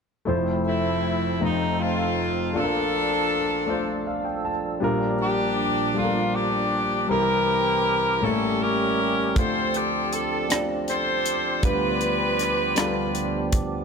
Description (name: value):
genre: slow gospel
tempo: 53 BPM (dotted quarters)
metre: 6/8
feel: straight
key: unclear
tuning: A4 = 439 Hz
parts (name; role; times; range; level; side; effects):
- warm grand piano; accompaniment; 0.3-13.8 s; F1 to A5; -27 LUFS; left 3 dB; none
- percussive tonewheel organ; sustained chords; 0.3-13.8 s; D2 to A4; -29 LUFS; right 5 dB; slow rotary speaker, overdrive, chorus vibrato
- bright saxophone section; melody; 0.7-13.5 s; A3 to C5; -24 LUFS; left 1 dB; none
- tight funk drum kit; drums; 9.4-13.7 s; hi-hat, kick drum, rim click; -25 LUFS; equal; none
room: moderate echo chamber reverb, RT60 2.4 s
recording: none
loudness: -21 LUFS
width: side -5 dB against mid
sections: 0.3-13.8 A section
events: grand piano fill 3.7-4.8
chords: 0.3 Fmaj7; 1.4 F7; 2.5 Bbmaj7; 4.8 Gm7/Bb; 7.1 C7; 8.2 A7b9; 9.4 Dm7; 11.6 G7/D